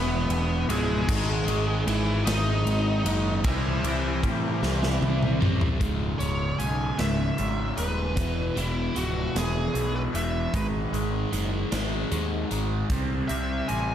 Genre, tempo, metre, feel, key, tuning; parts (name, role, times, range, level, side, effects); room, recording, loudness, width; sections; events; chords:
quiet-loud alternative rock; 51 BPM (dotted quarters); 6/8; straight; A4 = 443 Hz
biting lead guitar; melody; 0.0-13.9 s; E3 to G#5; -31 LUFS; equal; overdrive, slapback echo
overdriven electric guitar; riff; 0.0-13.9 s; C#2 to C4; -29 LUFS; equal; phaser
fuzz picked electric bass; bass; 0.0-13.9 s; C#1 to A2; -28 LUFS; equal; overdrive
big rock drum kit; drums; 0.3-13.9 s; crash cymbal, hi-hat, kick drum, ride cymbal, snare drum, toms; -31 LUFS; equal
clean electric guitar; arpeggios; 5.8-13.9 s; C#2 to C4; -34 LUFS; right 2 dB; tape echo
moderate lush hall reverb, RT60 2.9 s; big arena sound; -23 LUFS; side -10 dB against mid
0.0-5.8 A section; 5.8-13.9 B section
drum fill 4.6-5.8; lead electric guitar solo 5.8-13.9
0.0 C#m; 1.1 G#5; 3.4 C; 5.8 C#m; 8.2 E5; 10.5 G#5; 12.9 C5